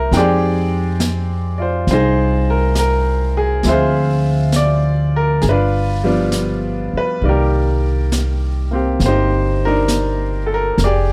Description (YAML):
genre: jazz ballad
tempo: 68 BPM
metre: 4/4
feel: swing 66% on 8ths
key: unclear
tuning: A4 = 439 Hz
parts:
  - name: bright upright piano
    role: accompaniment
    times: 0.0-11.1 s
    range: Eb3 to G5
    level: -20 LUFS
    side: equal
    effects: none
  - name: upright bass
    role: bass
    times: 0.0-11.1 s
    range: F1 to F2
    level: -20 LUFS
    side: equal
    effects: none
  - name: jazz brush drum kit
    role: drums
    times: 0.1-11.1 s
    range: brushed snare drum, hi-hat, snare drum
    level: -27 LUFS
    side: equal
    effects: none
room: light reverb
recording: dark, warm production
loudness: -17 LUFS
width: mono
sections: 0.0-11.1 A section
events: none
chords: 0.1 Fm9; 3.6 Dm7b5; 5.4 G7; 7.2 Cm9